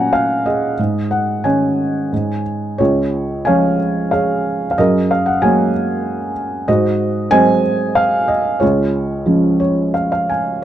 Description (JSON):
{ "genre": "classical, lyrical solo piano", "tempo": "84-96 BPM", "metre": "3/4", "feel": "rubato", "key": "Db major", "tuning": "A4 = 440 Hz", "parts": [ { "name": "felt-muted upright piano", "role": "solo", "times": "0.0-10.6 s", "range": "Db2 to Bb5", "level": "-14 LUFS", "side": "right 1 dB", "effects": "none" } ], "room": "light reverb", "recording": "dark, warm production", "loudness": "-14 LUFS", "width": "side -11 dB against mid", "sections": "0.0-10.6 A section", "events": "felt piano fill 9.3-10.6", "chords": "0.0 Gb/Bb; 0.8 Absus4; 2.8 Db; 4.8 Gbadd9; 6.7 Ab7; 8.6 Db", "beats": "0.14 | 0.78 1.44 2.12 | 2.80 3.47 4.13 | 4.78 5.42 6.05 | 6.68 7.32 7.96 | 8.61 9.26 9.95 | 10.63" }